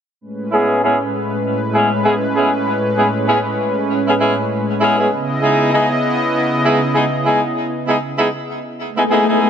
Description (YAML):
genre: glitch hop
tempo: 98 BPM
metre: 4/4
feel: swing 60% on 16ths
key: unclear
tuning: A4 = 442 Hz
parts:
  - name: warm analog pad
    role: sustained chords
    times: 0.2-8.7 s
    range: A2 to D#5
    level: -18 LUFS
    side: equal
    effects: chorus, tremolo
  - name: warm horn section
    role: stabs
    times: 0.5-9.5 s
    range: G#3 to G#4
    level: -16 LUFS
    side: equal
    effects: vintage 12-bit sampler grit, low-pass filter, digital delay
  - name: swell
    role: sound effects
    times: 8.9-9.5 s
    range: none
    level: -17 LUFS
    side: left 4 dB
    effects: none
room: moderate plate reverb, RT60 3.0 s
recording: none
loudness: -14 LUFS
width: side -8 dB against mid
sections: 0.2-9.5 A section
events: swell 8.9-9.5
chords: 0.2 Amaj9; 5.1 C#m9